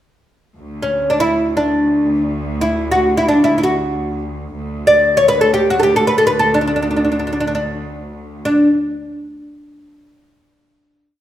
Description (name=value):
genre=Arabic maqam ensemble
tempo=free time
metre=none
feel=none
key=D maqam ajam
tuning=A4 = 440 Hz
part: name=bright studio cello section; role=drone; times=0.6-8.5 s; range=D2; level=-24 LUFS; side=equal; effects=none
part: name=oud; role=melody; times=0.8-8.7 s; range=C#4 to D5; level=-14 LUFS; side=equal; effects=none
room=wet recital hall reverb, RT60 1.4 s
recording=minimal, uncompressed stereo recording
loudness=-13 LUFS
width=side -12 dB against mid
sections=0.6-8.5 free-time section; 8.5-10.4 final note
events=none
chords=none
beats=free time